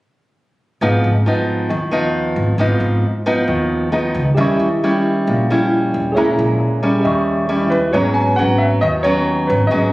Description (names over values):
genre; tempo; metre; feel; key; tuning
bossa nova; 135 BPM; 4/4; straight; unclear; A4 = 445 Hz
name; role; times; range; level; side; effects
nylon-string guitar; accompaniment; 0.8-9.9 s; G#2 to E4; -16 LUFS; equal; none
upright bass; bass; 0.8-9.9 s; G#1 to D#2; -21 LUFS; equal; none
tine electric piano; accompaniment; 4.3-9.9 s; F#4 to C#6; -22 LUFS; right 2 dB; medium stereo tremolo
warm grand piano; melody; 7.7-9.9 s; B4 to G#5; -18 LUFS; equal; none
room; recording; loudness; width
moderate large studio reverb, RT60 1.2 s; recorded on a phone in the room, studio reverb; -14 LUFS; side -19 dB against mid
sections
0.8-7.9 A section; 7.9-9.9 B section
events
none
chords
0.8 G#m6; 4.4 D#7b9; 6.2 A#m7b5; 7.0 D#7b9; 7.9 G#m11